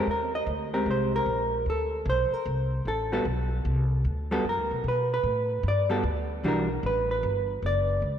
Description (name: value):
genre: jazz, small-group swing and bop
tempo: 151 BPM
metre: 4/4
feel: swing 64% on 8ths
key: G major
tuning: A4 = 440 Hz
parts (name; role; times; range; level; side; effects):
- vintage hollow-body jazz guitar; accompaniment; 0.0-8.0 s; E3 to Eb5; -26 LUFS; right 1 dB; none
- upright bass; bass; 0.0-8.2 s; F#1 to B2; -29 LUFS; equal; none
room: wet lush hall reverb, RT60 3.0 s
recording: dreamy mix soaked in reverb, cassette tape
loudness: -25 LUFS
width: side -9 dB against mid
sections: 0.0-6.4 A section; 6.4-8.2 A section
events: none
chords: 0.1 Abmaj9; 1.7 D7(no3); 3.3 Gadd9; 6.4 Em9